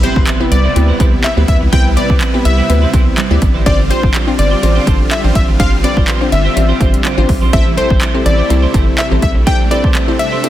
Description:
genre	dance-pop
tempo	124 BPM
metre	4/4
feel	straight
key	C major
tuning	A4 = 440 Hz
part	plucky unison lead	melody	0.0-10.5 s	C5 to G5	-19 LUFS	left 2 dB	tape echo
part	glassy wavetable pluck	accompaniment	0.0-10.5 s	B3 to D5	-19 LUFS	left 2 dB	chorus, sidechain pumping
part	supersaw chords	sustained chords	0.0-10.5 s	C3 to F4	-22 LUFS	right 1 dB	sidechain pumping
part	twelve-string electric guitar	riff	0.0-10.5 s	G3 to C5	-23 LUFS	right 6 dB	wide subtle chorus
part	round analog bass	bass	0.0-9.4 s	G1 to D2	-13 LUFS	equal	sidechain pumping
part	house drum kit	drums	0.0-10.5 s	handclaps, hi-hat, kick drum	-14 LUFS	equal	none
part	impact	sound effects	0.0-1.7 s	none	-27 LUFS	equal	none
room	digital ambience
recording	dense, heavily limited modern master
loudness	-10 LUFS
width	side -13 dB against mid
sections	0.0-10.5 A section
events	impact 0.0-1.7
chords	0.0 Cmaj7; 3.7 G7sus4; 7.5 Am7

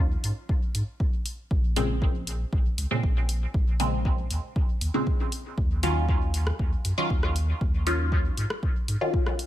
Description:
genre	dub techno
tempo	118 BPM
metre	4/4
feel	straight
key	Eb minor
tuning	A4 = 439 Hz
part	filtered dub chord stab	stabs	0.0-9.3 s	Bb2 to F4	-29 LUFS	equal	phaser, sidechain pumping, dub echo
part	warm sub bass	bass	0.0-9.0 s	Bb1 to Ab2	-28 LUFS	equal	sidechain pumping
part	deep house drum kit	drums	0.2-9.5 s	hi-hat, rim click	-33 LUFS	left 1 dB	studio reverb
part	electronic kick drum	drums	0.5-9.2 s	none	-26 LUFS	equal	studio reverb
room	little or no reverb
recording	none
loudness	-24 LUFS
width	side -13 dB against mid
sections	0.0-9.5 A section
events	none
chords	0.0 Ebm9; 1.5 Bbm9; 5.6 Ebm9

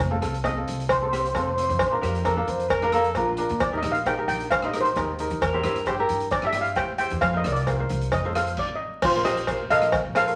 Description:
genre	calypso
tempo	133 BPM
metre	4/4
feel	straight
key	Bb major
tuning	A4 = 440 Hz
part	steel pan	melody	0.0-10.4 s	F4 to G5	-27 LUFS	equal	none
part	upright bass	bass	0.0-10.4 s	F1 to Eb3	-33 LUFS	equal	none
part	ukulele	accompaniment	0.1-10.3 s	C4 to Eb5	-30 LUFS	equal	none
part	street-band drum kit	drums	0.2-10.4 s	crash cymbal, hi-hat, kick drum, rim click	-36 LUFS	equal	none
part	cowbell	percussion	0.4-10.3 s	none	-30 LUFS	equal	none
part	warm alto saxophone	second line	2.0-6.2 s	F4 to C5	-30 LUFS	equal	none
room	wet studio reverb, RT60 0.6 s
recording	vinyl crackle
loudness	-24 LUFS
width	mono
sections	0.0-9.0 A section; 9.0-10.4 B section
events	steel pan solo 0.0-9.0; stop 8.6-9.0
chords	0.0 F7; 1.8 Bb; 3.6 Eb6; 5.4 C7/E; 7.2 Fsus4; 8.1 F; 9.0 Bbsus2

